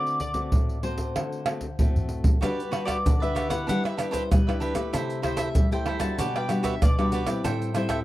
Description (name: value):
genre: samba and choro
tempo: 95 BPM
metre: 4/4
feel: straight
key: G major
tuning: A4 = 439 Hz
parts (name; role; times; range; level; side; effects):
- mandolin; melody; 0.0-8.0 s; B4 to A5; -32 LUFS; equal; none
- nylon-string guitar; accompaniment; 0.0-8.0 s; A2 to B4; -29 LUFS; left 2 dB; none
- pandeiro, surdo, tamborim and maracas; percussion; 0.1-8.0 s; none; -25 LUFS; right 1 dB; none
- cavaquinho; accompaniment; 2.4-8.0 s; D4 to G5; -32 LUFS; right 5 dB; none
room: small room ambience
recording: dry, close 1970s-style studio recording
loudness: -23 LUFS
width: side -16 dB against mid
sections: 0.0-2.4 A section; 2.4-8.0 B section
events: drum fill 1.2-2.4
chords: 0.0 D7; 2.4 Gmaj7; 3.7 Em7/G; 4.9 C6; 6.2 Gmaj7/B; 7.4 Am7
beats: 0.53 1.16 1.78 | 2.42 3.04 3.67 4.30 | 4.93 5.56 6.19 6.82 | 7.45